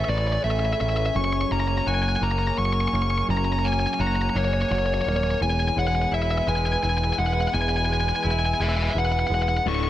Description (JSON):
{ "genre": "post-rock", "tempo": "56 BPM (dotted quarters)", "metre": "6/8", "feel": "straight", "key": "unclear", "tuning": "A4 = 437 Hz", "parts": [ { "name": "fuzz lead guitar", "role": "melody", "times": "0.0-9.9 s", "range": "C#5 to C#6", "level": "-25 LUFS", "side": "left 1 dB", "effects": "distortion, digital delay" }, { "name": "rich studio string section", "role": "sustained chords", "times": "0.0-9.9 s", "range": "C#3 to G#5", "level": "-33 LUFS", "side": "right 2 dB", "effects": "none" }, { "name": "twangy electric guitar", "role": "arpeggios", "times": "0.0-9.9 s", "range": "D2 to A4", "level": "-30 LUFS", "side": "left 2 dB", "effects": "digital delay" }, { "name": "vibraphone with soft mallets", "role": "arpeggios", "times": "0.0-9.9 s", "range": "A4 to C#6", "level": "-37 LUFS", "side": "right 4 dB", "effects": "digital delay" }, { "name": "growling picked electric bass", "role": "bass", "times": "0.1-9.9 s", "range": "D1 to A1", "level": "-25 LUFS", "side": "equal", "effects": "overdrive" }, { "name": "biting overdriven guitar", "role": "riff", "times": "9.7-9.9 s", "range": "D2 to D3", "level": "-25 LUFS", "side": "left 11 dB", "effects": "none" } ], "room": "light reverb, small room ambience", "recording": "none", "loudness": "-21 LUFS", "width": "side -13 dB against mid", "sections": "0.0-9.7 A section", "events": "none", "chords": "0.0 Amaj7; 1.2 F#add9; 5.4 E", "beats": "0.10 | 1.16 2.23 | 3.29 4.35 | 5.42 6.48 | 7.54 8.61 | 9.67" }